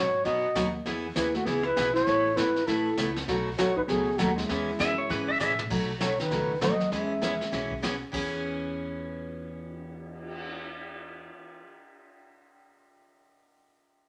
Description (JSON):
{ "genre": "country, western swing", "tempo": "198 BPM", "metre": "4/4", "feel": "swing 62% on 8ths", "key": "E major", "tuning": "A4 = 440 Hz", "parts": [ { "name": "breathy flugelhorn", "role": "melody", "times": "0.0-7.8 s", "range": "E4 to E5", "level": "-31 LUFS", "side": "equal", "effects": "none" }, { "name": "hollow-body jazz guitar", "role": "second line", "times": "0.0-7.8 s", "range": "D#3 to F#4", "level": "-34 LUFS", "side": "equal", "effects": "none" }, { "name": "picked steel-string acoustic guitar", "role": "accompaniment", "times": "0.0-11.6 s", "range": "B2 to B4", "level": "-33 LUFS", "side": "equal", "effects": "none" }, { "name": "upright bass", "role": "bass", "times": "0.0-11.3 s", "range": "G#1 to A2", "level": "-42 LUFS", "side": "equal", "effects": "none" }, { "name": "vintage brush drum kit", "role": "drums", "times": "0.3-10.5 s", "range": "brushed snare drum, crash cymbal, cymbal swell, hi-hat, kick drum, snare drum, toms", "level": "-39 LUFS", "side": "equal", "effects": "none" }, { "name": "clean lap steel guitar", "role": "second line", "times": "4.8-5.6 s", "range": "B4 to E5", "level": "-30 LUFS", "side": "equal", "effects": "none" } ], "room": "wet studio reverb, RT60 0.7 s", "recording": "none", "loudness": "-28 LUFS", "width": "mono", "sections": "0.0-5.7 A section; 5.7-8.1 B section; 8.1-10.6 C section", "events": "drum fill 5.4-5.7", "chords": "0.0 B; 0.9 E; 2.1 Asus2; 3.3 B7; 4.5 E6; 5.7 B7; 6.9 E6" }